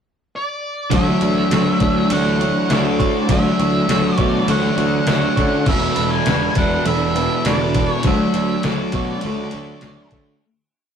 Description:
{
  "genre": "rock, shoegaze and dream pop",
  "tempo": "101 BPM",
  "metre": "4/4",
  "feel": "straight",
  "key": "D major",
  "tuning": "A4 = 437 Hz",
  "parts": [
    { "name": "octave-fuzz lead guitar", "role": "melody", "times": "0.4-10.1 s", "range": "D5 to G#5", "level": "-24 LUFS", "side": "equal", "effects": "distortion" },
    { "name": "twelve-string electric guitar", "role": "arpeggios", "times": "0.9-10.9 s", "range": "F#3 to A4", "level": "-24 LUFS", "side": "left 1 dB", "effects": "none" },
    { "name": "direct-recorded clean electric guitar", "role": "riff", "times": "0.9-10.4 s", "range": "D3 to C#5", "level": "-23 LUFS", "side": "right 8 dB", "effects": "none" },
    { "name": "overdriven electric guitar", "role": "riff", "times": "0.9-10.4 s", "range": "E2 to D4", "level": "-26 LUFS", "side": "right 2 dB", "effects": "none" },
    { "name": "thick fuzz guitar", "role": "riff", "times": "0.9-10.4 s", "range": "E2 to D4", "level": "-23 LUFS", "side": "left 5 dB", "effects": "distortion" },
    { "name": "fuzz picked electric bass", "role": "bass", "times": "0.9-10.3 s", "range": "E1 to D3", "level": "-23 LUFS", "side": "equal", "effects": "overdrive" },
    { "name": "detuned 8-bit digital drum machine", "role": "drums", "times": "0.9-10.3 s", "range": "crash cymbal, kick drum, ride cymbal, snare drum", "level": "-22 LUFS", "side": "left 1 dB", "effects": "none" }
  ],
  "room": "wet studio ambience, RT60 0.5 s",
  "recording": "rough rehearsal-room recording, tube saturation",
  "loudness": "-15 LUFS",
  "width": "side -7 dB against mid",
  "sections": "0.0-0.9 pickup bar; 0.9-10.4 A section",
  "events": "fade-out 8.1-10.4",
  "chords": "0.0 N.C.; 0.9 Dmaj9; 5.7 E7sus4; 8.1 Dmaj7"
}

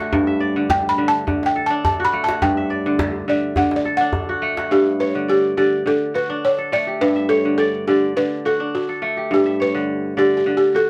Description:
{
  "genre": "west african traditional, West African string and xylophone music",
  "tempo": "104 BPM",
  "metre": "4/4",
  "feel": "straight",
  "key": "G lydian",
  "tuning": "A4 = 439 Hz",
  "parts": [
    { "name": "balafon", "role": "melody", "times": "0.0-10.9 s", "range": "F#4 to B5", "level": "-21 LUFS", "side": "equal", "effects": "none" },
    { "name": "kora", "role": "arpeggios", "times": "0.0-10.9 s", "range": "G2 to E5", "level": "-23 LUFS", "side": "equal", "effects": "none" },
    { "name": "djembe", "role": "percussion", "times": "0.1-4.7 s", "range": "none", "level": "-28 LUFS", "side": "equal", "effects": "none" }
  ],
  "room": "light reverb",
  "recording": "band playing live in one room",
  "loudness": "-19 LUFS",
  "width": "mono",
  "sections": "0.0-4.7 A section; 4.7-10.9 B section",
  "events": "balafon solo 0.0-4.7",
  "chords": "0.1 G5; 1.3 D; 2.4 G5; 3.6 D; 4.7 G5; 5.9 D; 7.0 G5; 8.2 D; 9.3 G"
}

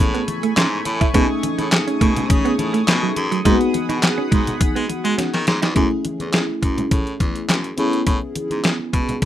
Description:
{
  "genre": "early-eighties boogie funk",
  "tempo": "104 BPM",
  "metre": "4/4",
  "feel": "straight",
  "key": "F# dorian",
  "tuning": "A4 = 441 Hz",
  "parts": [
    { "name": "FM electric piano with soft pad layer", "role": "accompaniment", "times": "0.0-9.3 s", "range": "A3 to G#4", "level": "-23 LUFS", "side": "left 1 dB", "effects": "chorus, tremolo, plate reverb" },
    { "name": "chorused pulse-width pad", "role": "sustained chords", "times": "0.0-5.7 s", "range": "A3 to D#6", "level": "-28 LUFS", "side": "left 2 dB", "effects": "plate reverb" },
    { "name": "edgy baritone saxophone", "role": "bass", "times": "0.0-9.3 s", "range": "E2 to G#3", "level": "-24 LUFS", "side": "equal", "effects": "none" },
    { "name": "clean electric guitar", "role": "riff", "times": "0.1-5.7 s", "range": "F#3 to E4", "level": "-22 LUFS", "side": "right 7 dB", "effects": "wide subtle chorus" },
    { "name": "detuned 8-bit digital drum machine", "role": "drums", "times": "0.1-9.3 s", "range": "handclaps, hi-hat, kick drum, snare drum", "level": "-18 LUFS", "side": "equal", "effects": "none" },
    { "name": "congas", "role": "percussion", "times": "0.3-9.3 s", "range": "none", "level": "-30 LUFS", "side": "left 1 dB", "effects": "none" }
  ],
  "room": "moderate small room reverb, RT60 0.5 s",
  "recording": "rough home demo mix",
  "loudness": "-17 LUFS",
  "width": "side -11 dB against mid",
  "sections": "0.0-5.8 A section; 5.8-9.3 B section",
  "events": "drum fill 5.2-5.8",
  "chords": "0.0 Amaj9; 1.1 B13; 3.5 G#m7; 5.8 F#m9; 7.8 Amaj9"
}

